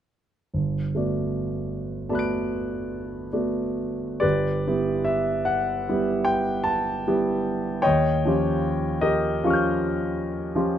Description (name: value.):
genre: classical, impressionist solo piano.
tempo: 42-55 BPM (dotted quarters).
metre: 9/8.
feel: rubato.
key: G lydian.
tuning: A4 = 440 Hz.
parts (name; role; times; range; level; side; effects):
clear concert grand piano; solo; 0.5-10.8 s; G1 to D7; -22 LUFS; equal; none.
room: light reverb.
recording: none.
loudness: -22 LUFS.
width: side -10 dB against mid.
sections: 0.6-4.2 A section; 4.2-10.8 B section.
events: none.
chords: 0.6 Gmaj9; 4.2 G6; 7.8 Eb9.